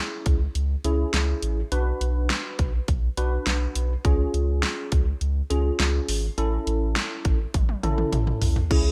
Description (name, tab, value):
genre	synth-pop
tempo	103 BPM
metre	4/4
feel	straight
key	unclear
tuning	A4 = 443 Hz
part	tine electric piano	accompaniment	0.0-8.9 s	C#4 to B4	-32 LUFS	equal	analog chorus
part	round analog bass	bass	0.3-8.9 s	G#1 to C#2	-27 LUFS	equal	none
part	pop drum kit	drums	0.3-8.8 s	crash cymbal, hi-hat, kick drum, snare drum, toms	-27 LUFS	equal	none
room	light reverb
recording	bright 1980s-style digital production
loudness	-24 LUFS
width	mono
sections	0.0-8.9 A section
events	drum fill 7.5-8.7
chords	0.0 C#m; 1.7 Bm; 4.0 C#; 6.4 A